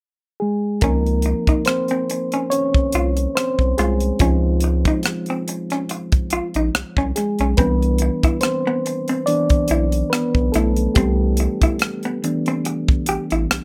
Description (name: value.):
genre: R&B, neo-soul.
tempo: 71 BPM.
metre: 4/4.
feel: swing 55% on 16ths.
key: unclear.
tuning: A4 = 437 Hz.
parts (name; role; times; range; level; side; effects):
reed electric piano; accompaniment; 0.4-13.6 s; E3 to D5; -24 LUFS; equal; none.
vintage hollow-body jazz guitar; second line; 0.8-13.4 s; B3 to G4; -26 LUFS; equal; none.
round analog bass; bass; 0.8-13.6 s; A1 to Db2; -22 LUFS; equal; none.
tight funk drum kit; drums; 0.8-13.6 s; hi-hat, kick drum, rim click; -22 LUFS; equal; none.
room: little or no reverb.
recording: none.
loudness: -20 LUFS.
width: mono.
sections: 0.8-13.6 A section.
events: reed electric piano solo 0.8-13.6.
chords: 0.0 N.C.; 0.8 Dbmaj9; 7.6 Cmaj9.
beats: | 0.82 1.67 2.51 3.36 | 4.20 5.05 5.89 6.74 | 7.58 8.43 9.27 10.12 | 10.96 11.81 12.65 13.50.